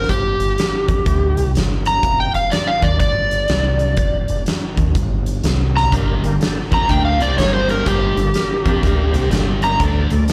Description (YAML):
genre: blues rock power trio and southern rock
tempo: 124 BPM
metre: 4/4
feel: swing 64% on 8ths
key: G minor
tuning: A4 = 438 Hz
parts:
  - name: overdriven slide guitar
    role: melody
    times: 0.0-9.8 s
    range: G4 to Bb5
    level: -21 LUFS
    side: equal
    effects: slapback echo
  - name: growling fingered electric bass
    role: bass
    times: 0.0-10.3 s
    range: F1 to F2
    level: -21 LUFS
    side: equal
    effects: overdrive
  - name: huge arena drum kit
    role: drums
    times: 0.0-10.3 s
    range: hi-hat, kick drum, snare drum, toms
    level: -23 LUFS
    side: equal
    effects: none
  - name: overdriven tonewheel organ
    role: sustained chords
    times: 5.9-10.3 s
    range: A3 to D5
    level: -30 LUFS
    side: equal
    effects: slow rotary speaker, chorus vibrato
  - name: sludgy distorted guitar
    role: riff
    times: 5.9-10.2 s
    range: G2 to F4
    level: -24 LUFS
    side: equal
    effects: overdrive, slapback echo
room: small room ambience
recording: live gig heard through the venue's PA, club reverb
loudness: -17 LUFS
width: mono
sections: 0.0-10.3 A section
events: drum fill 5.7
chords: 0.0 G5; 2.0 F7(no3); 3.0 G5; 3.5 Csus2; 4.0 Dm/F; 4.9 N.C.; 5.4 Bbsus2/C; 5.9 Gm; 9.8 D5